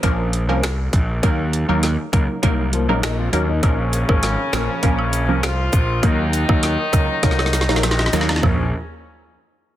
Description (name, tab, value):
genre	dancehall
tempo	100 BPM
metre	4/4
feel	straight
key	Bb minor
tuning	A4 = 440 Hz
part	wavetable chord stab	accompaniment	0.0-8.7 s	F3 to Bb4	-23 LUFS	right 1 dB	phaser, low-pass filter
part	fuzz picked electric bass	bass	0.0-8.7 s	Ab1 to Eb2	-21 LUFS	equal	overdrive
part	island pop drum kit	drums	0.0-8.6 s	finger snaps, hi-hat, kick drum, rim click, snare drum, toms	-20 LUFS	equal	soft clipping on snare
part	nylon-string guitar	arpeggios	2.7-3.8 s	F3 to Gb4	-25 LUFS	left 6 dB	low-pass filter
part	clear horn section	second line	3.6-8.7 s	Db3 to F4	-24 LUFS	left 2 dB	digital delay
part	woodblock and cabasa	percussion	3.6-8.7 s	none	-32 LUFS	right 7 dB	none
room	light reverb, small room ambience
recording	dense, heavily limited modern master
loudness	-16 LUFS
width	side -13 dB against mid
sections	0.0-8.4 A section; 8.4-9.8 B section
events	filter sweep 0.0-8.4; drum fill 7.2-8.4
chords	0.0 Bbm; 1.2 Ebm; 3.6 Bbm; 6.0 Ebm; 8.4 Bbm